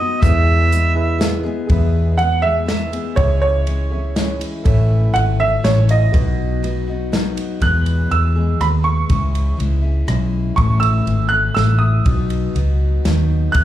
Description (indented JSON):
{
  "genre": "honky-tonk and classic country",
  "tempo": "122 BPM",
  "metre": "3/4",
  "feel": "straight",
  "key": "E major",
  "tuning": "A4 = 440 Hz",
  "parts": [
    { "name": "mellow harmonica", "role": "melody", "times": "0.0-1.5 s", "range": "D#5 to E5", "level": "-19 LUFS", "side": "right 3 dB", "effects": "slapback echo" },
    { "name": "picked steel-string acoustic guitar", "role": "accompaniment", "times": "0.0-13.6 s", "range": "E2 to G#4", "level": "-25 LUFS", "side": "left 6 dB", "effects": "slapback echo" },
    { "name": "warm baby grand piano", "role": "accompaniment", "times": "0.0-7.6 s", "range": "D#4 to E5", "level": "-29 LUFS", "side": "right 10 dB", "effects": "slapback echo" },
    { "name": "vintage muted fingered electric bass", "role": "bass", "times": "0.2-13.6 s", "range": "G#1 to E2", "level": "-17 LUFS", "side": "equal", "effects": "none" },
    { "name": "natural country drum kit", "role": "drums", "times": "0.2-13.6 s", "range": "hi-hat, kick drum, ride cymbal, rim click, snare drum", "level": "-20 LUFS", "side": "equal", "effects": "none" },
    { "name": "bright upright piano", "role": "second line", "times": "2.2-13.6 s", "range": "C#5 to F#6", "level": "-20 LUFS", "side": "right 4 dB", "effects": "slapback echo" }
  ],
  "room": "little or no reverb",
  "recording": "live gig heard through the venue's PA, club reverb",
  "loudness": "-14 LUFS",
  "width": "side -12 dB against mid",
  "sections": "0.0-1.7 A section; 1.7-7.6 B section; 7.6-13.6 C section",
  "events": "upright piano solo 1.7-7.6, 7.6-13.6",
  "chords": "0.2 E; 3.2 C#m; 4.7 A; 6.1 B; 7.6 E; 9.1 C#m; 10.6 A; 12.1 B"
}